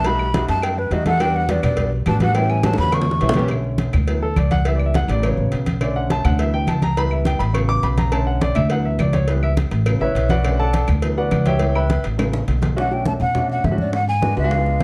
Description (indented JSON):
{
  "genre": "Afro-Cuban jazz",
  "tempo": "208 BPM",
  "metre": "4/4",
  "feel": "straight",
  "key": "B minor from 3.5 s",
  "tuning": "A4 = 436 Hz",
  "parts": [
    { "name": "mellow hollow jazz flute", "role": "melody", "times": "0.0-3.4, 12.8-14.8 s", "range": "B4 to C#6", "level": "-24 LUFS", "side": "equal", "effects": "none" },
    { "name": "upright bass", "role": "bass", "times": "0.0-14.8 s", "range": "A1 to B2", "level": "-23 LUFS", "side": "equal", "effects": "none" },
    { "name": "cowbell and bongos", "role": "percussion", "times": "0.0-14.8 s", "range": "none", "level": "-31 LUFS", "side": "equal", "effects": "none" },
    { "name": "warm upright piano", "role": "accompaniment", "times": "0.1-14.8 s", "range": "C#3 to D6", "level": "-25 LUFS", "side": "equal", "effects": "none" },
    { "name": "congas", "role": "percussion", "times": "0.1-14.8 s", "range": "none", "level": "-27 LUFS", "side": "equal", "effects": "none" },
    { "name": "claves", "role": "percussion", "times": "0.2-12.3 s", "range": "none", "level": "-39 LUFS", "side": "equal", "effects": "none" }
  ],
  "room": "moderate large studio reverb, RT60 1.0 s",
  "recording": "dark, warm production",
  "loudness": "-19 LUFS",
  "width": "mono",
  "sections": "0.0-3.5 A section; 3.5-12.8 A section; 12.8-14.8 B section",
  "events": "flute solo 0.0-3.5; drum fill 2.6-3.5, 12.2-12.8; upright piano solo 3.5-12.8",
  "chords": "0.1 B7b13; 1.2 Em9; 2.4 A9; 3.5 Bm7; 4.1 D69; 4.7 C#m7b5; 5.2 A69; 5.8 Bm7; 6.4 D69; 7.0 C#m7b5; 7.5 A69; 8.1 Bm7; 8.7 D69; 9.3 C#m7b5; 9.9 A69; 10.4 Bm7; 11.0 D69; 11.6 C#m7b5; 12.2 A69; 12.8 Bm9; 13.9 G#m7b5",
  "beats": "| 0.06 0.34 0.63 0.92 | 1.21 1.49 1.78 2.07 | 2.35 2.64 2.93 3.22 | 3.51 3.79 4.08 4.37 | 4.66 4.95 5.24 5.53 | 5.82 6.10 6.39 6.68 | 6.97 7.26 7.55 7.84 | 8.13 8.42 8.71 9.00 | 9.29 9.57 9.86 10.15 | 10.44 10.73 11.02 11.31 | 11.60 11.89 12.19 12.48 | 12.77 13.06 13.35 13.64 | 13.93 14.22 14.51 14.80"
}